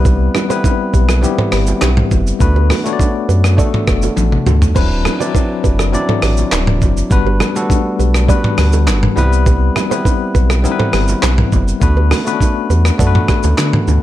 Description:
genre	afrobeats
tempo	102 BPM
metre	4/4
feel	straight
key	D mixolydian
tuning	A4 = 438 Hz
part	bell-like tine electric piano	accompaniment	0.0-14.0 s	F#3 to D5	-18 LUFS	left 4 dB	medium stereo tremolo
part	sub bass with octave	bass	0.0-14.0 s	D1 to D3	-14 LUFS	equal	none
part	nylon-string guitar	riff	0.1-14.0 s	D4 to D5	-24 LUFS	right 8 dB	tape echo
part	dusty soul sampler-style drum kit	drums	0.1-14.0 s	crash cymbal, handclaps, hi-hat, kick drum, rim click, shaker, toms	-15 LUFS	equal	none
part	congas and bongos	percussion	0.1-14.0 s	none	-24 LUFS	right 7 dB	none
room	little or no reverb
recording	dark, warm production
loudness	-11 LUFS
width	side -14 dB against mid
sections	0.0-4.8 A section; 4.8-14.0 A section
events	drum fill 4.2-4.8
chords	0.0 Cmaj7; 2.4 Bm7/D; 4.8 D13; 7.1 Gmaj7; 9.2 Cmaj7; 11.8 Bm7/D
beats	| 0.05 0.64 1.23 1.82 | 2.40 2.99 3.58 4.17 | 4.76 5.34 5.93 6.52 | 7.11 7.70 8.29 8.88 | 9.46 10.05 10.64 11.23 | 11.82 12.40 12.99 13.58

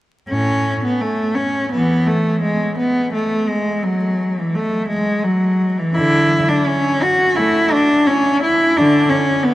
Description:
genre	classical, baroque-style suite movement for unaccompanied cello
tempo	85 BPM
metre	4/4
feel	rubato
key	A major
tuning	A4 = 440 Hz
part	rich cello	solo	0.3-9.5 s	A2 to F#4	-14 LUFS	equal	none
room	wet cathedral reverb, RT60 5.9 s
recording	vinyl crackle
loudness	-14 LUFS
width	side -15 dB against mid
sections	0.3-9.5 A section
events	none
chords	none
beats	| 0.30 1.02 1.73 2.43 | 3.14 3.85 4.56 5.26 | 5.96 6.67 7.38 8.09 | 8.78 9.46

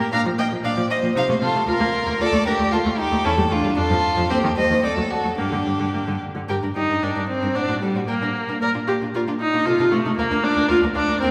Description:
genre	quick classical-period movement for string quartet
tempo	115 BPM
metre	2/4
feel	rubato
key	G minor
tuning	A4 = 440 Hz
part	warm violin	melody	0.0-11.3 s	F4 to Bb5	-28 LUFS	equal	none
part	rich violin	second line	0.0-11.3 s	D4 to F5	-28 LUFS	equal	none
part	clear viola	accompaniment	0.0-11.3 s	D3 to Bb4	-25 LUFS	equal	none
part	rich cello	bass	0.0-11.3 s	D2 to C3	-28 LUFS	equal	none
room	wet church reverb, RT60 3.0 s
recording	recorded in a church or concert hall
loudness	-21 LUFS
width	mono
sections	0.0-6.5 A section; 6.5-11.3 A section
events	none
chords	0.1 Bb; 1.2 F/C; 1.7 Bb/D; 2.2 Dm; 3.2 A7(no3)/E; 3.8 Dm/F (rootless); 4.3 Cm/Eb; 4.8 D; 5.4 G5; 6.5 Gm; 7.6 D/A; 8.1 N.C.; 8.6 Bb; 9.7 F/C; 10.2 Bb/D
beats	| 0.13 0.65 | 1.17 1.69 | 2.20 2.72 | 3.24 3.77 | 4.29 4.83 | 5.38 5.94 | 6.49 7.03 | 7.55 8.08 | 8.62 9.14 | 9.66 10.18 | 10.70 11.21

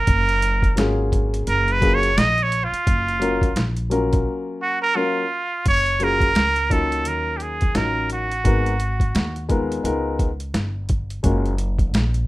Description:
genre	hip hop, jazz-hop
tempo	86 BPM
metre	4/4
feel	swing 60% on 16ths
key	F# major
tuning	A4 = 440 Hz
part	trumpet with straight mute	melody	0.0-9.5 s	E#4 to D#5	-21 LUFS	right 2 dB	none
part	upright bass	bass	0.0-12.3 s	F#1 to D#2	-24 LUFS	equal	none
part	boom bap sampler-style drum kit	drums	0.1-12.3 s	hi-hat, kick drum, snare drum	-21 LUFS	equal	overdrive
part	warm upright piano	accompaniment	0.8-11.5 s	F#3 to A#4	-24 LUFS	left 3 dB	none
room	light reverb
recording	rough home demo mix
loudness	-18 LUFS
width	side -18 dB against mid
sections	0.0-5.7 A section; 5.7-12.3 B section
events	muted trumpet solo 0.0-5.7; break 4.3-5.7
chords	0.1 F#maj7; 7.1 D#m9; 8.4 G#m7; 9.8 C#13; 11.2 F#maj7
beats	| 0.08 0.77 1.47 2.17 | 2.87 3.56 4.26 4.96 | 5.66 6.36 7.05 7.75 | 8.45 9.15 9.84 10.54 | 11.24 11.94

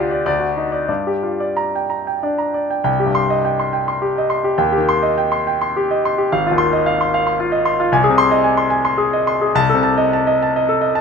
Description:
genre	classical, romantic character piece for solo piano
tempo	86-114 BPM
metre	3/4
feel	rubato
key	C minor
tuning	A4 = 440 Hz
part	clear concert grand piano	solo	0.0-11.0 s	Ab1 to C6	-15 LUFS	equal	none
room	light reverb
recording	none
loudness	-15 LUFS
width	side -6 dB against mid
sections	0.0-2.9 A section; 2.9-11.0 B section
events	none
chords	0.2 D; 0.9 Gm; 2.9 Cm; 4.6 Cm/Eb; 6.3 Ab6; 7.9 Ab/C; 9.6 Adim/C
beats	0.25 | 0.88 1.57 2.23 | 2.88 3.46 4.03 | 4.59 5.16 5.74 | 6.30 6.84 7.38 | 7.92 8.44 8.99 | 9.56 10.12 10.68

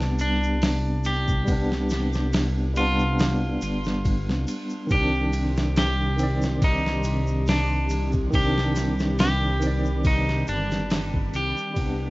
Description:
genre	trip hop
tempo	70 BPM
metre	4/4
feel	swing 54% on 16ths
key	C harmonic minor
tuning	A4 = 442 Hz
part	clean electric guitar	melody	0.0-12.1 s	D4 to G4	-28 LUFS	equal	tape echo
part	overdriven tine electric piano	accompaniment	0.0-12.1 s	Eb3 to D5	-28 LUFS	equal	tremolo, tape echo
part	dark detuned saw bass	bass	0.0-12.1 s	G1 to C2	-25 LUFS	equal	none
part	boom bap sampler-style drum kit	drums	0.0-12.0 s	hi-hat, kick drum, ride cymbal, snare drum	-26 LUFS	equal	none
part	tube shaker	percussion	0.2-11.9 s	none	-44 LUFS	left 1 dB	none
part	string machine, cellos	sustained chords	4.9-12.1 s	G4 to D6	-35 LUFS	left 1 dB	phaser, ensemble chorus, vintage 12-bit sampler grit
room	little or no reverb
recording	rough home demo mix, vinyl crackle, nothing above 7.6 kHz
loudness	-21 LUFS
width	side -21 dB against mid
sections	0.0-12.1 A section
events	fade-out 9.5-12.1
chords	0.0 G/C; 4.9 Cmadd9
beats	0.62 | 1.48 2.33 3.19 4.05 | 4.91 5.76 6.62 7.48 | 8.34 9.19 10.05 10.91 | 11.76

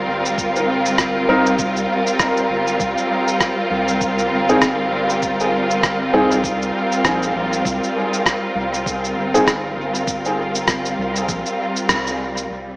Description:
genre	ambient dub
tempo	99 BPM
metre	4/4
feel	swing 58% on 16ths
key	unclear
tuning	A4 = 441 Hz
part	warm symphonic string section	sustained chords	0.0-12.8 s	G3 to Bb4	-19 LUFS	equal	none
part	round analog bass	bass	0.0-12.8 s	G1 to C2	-31 LUFS	equal	none
part	electronic cabasa and rim click	drums	0.3-12.5 s	none	-22 LUFS	equal	studio reverb, dub echo
part	electronic kick drum	drums	0.4-12.0 s	none	-29 LUFS	equal	studio reverb
part	clear upright piano	stabs	1.3-9.4 s	C4 to Bb4	-21 LUFS	equal	low-pass filter, dub echo
room	wet echo chamber reverb, RT60 2.0 s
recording	small speaker sound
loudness	-16 LUFS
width	side -26 dB against mid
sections	0.0-12.5 A section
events	filter sweep on upright piano 0.0-12.5; band accent 11.9-12.2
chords	0.0 C7(no3); 2.8 N.C.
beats	| 0.38 0.98 1.59 2.20 | 2.80 3.41 4.01 4.62 | 5.23 5.83 6.44 7.05 | 7.65 8.26 8.86 9.47 | 10.08 10.68 11.29 11.89 | 12.50

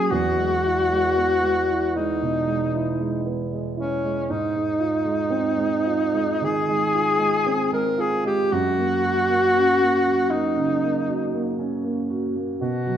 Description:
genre	classical, impressionist duo for alto saxophone and grand piano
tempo	58 BPM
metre	4/4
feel	rubato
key	unclear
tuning	A4 = 443 Hz
part	warm alto saxophone	melody	0.0-13.0 s	C#4 to A#4	-21 LUFS	left 1 dB	none
part	dark grand piano	accompaniment	0.0-13.0 s	E2 to F#4	-24 LUFS	right 2 dB	none
room	wet scoring stage reverb, RT60 1.4 s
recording	minimal, uncompressed stereo recording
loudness	-20 LUFS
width	side -9 dB against mid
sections	0.0-13.0 A section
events	none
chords	0.1 Eadd9; 4.3 G#6; 8.5 F#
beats	| 0.10 1.17 2.21 3.25 | 4.29 5.31 6.42 7.46 | 8.52 9.55 10.55 11.59 | 12.60

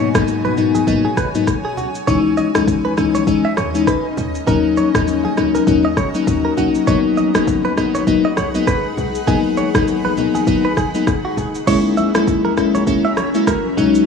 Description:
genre	afrobeats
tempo	100 BPM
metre	4/4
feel	swing 58% on 16ths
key	unclear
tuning	A4 = 443 Hz
part	crystalline FM electric piano	accompaniment	0.0-14.1 s	G#2 to E4	-16 LUFS	left 4 dB	chorus
part	granular cloud pad	sustained chords	0.0-14.1 s	B2 to B5	-23 LUFS	left 3 dB	built-in reverb
part	direct-recorded clean electric guitar	riff	0.0-13.7 s	F#4 to E5	-24 LUFS	right 5 dB	tape echo
part	afro-pop drum kit	drums	0.1-14.1 s	crash cymbal, kick drum, rim click, shaker	-21 LUFS	equal	vintage 12-bit sampler grit
part	congas	percussion	0.2-13.9 s	none	-29 LUFS	right 2 dB	none
part	short 808-style bass	bass	2.1-14.0 s	E1 to D#2	-27 LUFS	equal	none
room	light reverb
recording	rough home demo mix, small room reverb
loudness	-14 LUFS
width	side -6 dB against mid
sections	0.0-11.7 A section; 11.7-14.1 B section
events	none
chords	0.0 G#m7; 2.1 C#madd9; 4.5 D#m7; 6.9 G#m7; 11.7 F#7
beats	0.27 0.87 1.47 | 2.07 2.67 3.27 3.87 | 4.47 5.07 5.67 6.27 | 6.87 7.47 8.07 8.67 | 9.27 9.87 10.47 11.07 | 11.67 12.27 12.87 13.47

